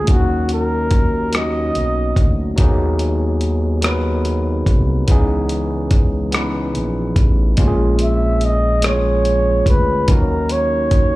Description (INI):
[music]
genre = slow six-eight R&B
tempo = 48 BPM (dotted quarters)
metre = 6/8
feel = straight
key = G# minor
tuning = A4 = 440 Hz
[part]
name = breathy flugelhorn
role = melody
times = 0.0-2.3, 8.0-11.2 s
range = F#4 to E5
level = -20 LUFS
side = right 1 dB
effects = slapback echo, tape echo
[part]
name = overdriven tine electric piano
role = accompaniment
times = 0.0-11.2 s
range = E3 to B4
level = -21 LUFS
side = left 1 dB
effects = slapback echo
[part]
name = smooth synth bass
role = bass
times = 0.0-11.2 s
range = A1 to D#2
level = -19 LUFS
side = equal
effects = none
[part]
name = dusty soul sampler-style drum kit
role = drums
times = 0.1-11.1 s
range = hi-hat, kick drum, rim click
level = -16 LUFS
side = equal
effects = none
[sound]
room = digital ambience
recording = live gig heard through the venue's PA, club reverb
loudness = -14 LUFS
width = side -18 dB against mid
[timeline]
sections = 0.0-11.2 A section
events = none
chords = 0.1 D#m7; 2.6 G#m7/D#; 5.1 C#m9; 7.6 A#m7; 10.1 D#m7